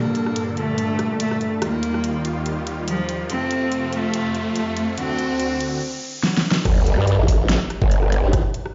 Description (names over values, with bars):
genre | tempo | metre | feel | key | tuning
heavy wobble dubstep | 143 BPM | 4/4 | swing 54% on 16ths, half-time | unclear | A4 = 440 Hz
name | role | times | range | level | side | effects
bright cello | melody | 0.0-6.5 s | F3 to C4 | -26 LUFS | equal | digital delay
supersaw chords | sustained chords | 0.0-5.8 s | D2 to A4 | -28 LUFS | equal | sidechain pumping
riser and sub drop | sound effects | 2.4-8.3 s | none | -35 LUFS | equal | none
dubstep drum kit | drums | 0.1-8.7 s | crash cymbal, hi-hat, rim click, snare drum | -27 LUFS | equal | overdrive
growl bass | bass | 6.7-8.2 s | G1 to G2 | -20 LUFS | equal | chorus, overdrive
electronic kick drum | drums | 6.7-8.4 s | none | -21 LUFS | equal | overdrive
formant-sweep wobble bass | bass | 7.2-8.4 s | G1 to A1 | -21 LUFS | equal | chorus, overdrive
room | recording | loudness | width
light reverb | played on a big sound system in a bare room, stone room reverb, nothing above 7.5 kHz | -21 LUFS | mono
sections
0.0-6.7 A section; 6.7-8.7 B section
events
build-up 0.0-6.7; riser 2.4-6.7; drum fill 6.2-6.7; drop 6.7-8.7; impact 6.7-8.3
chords
0.0 Gmadd9; 1.6 Ebadd9; 3.3 F; 5.0 D; 6.7 N.C.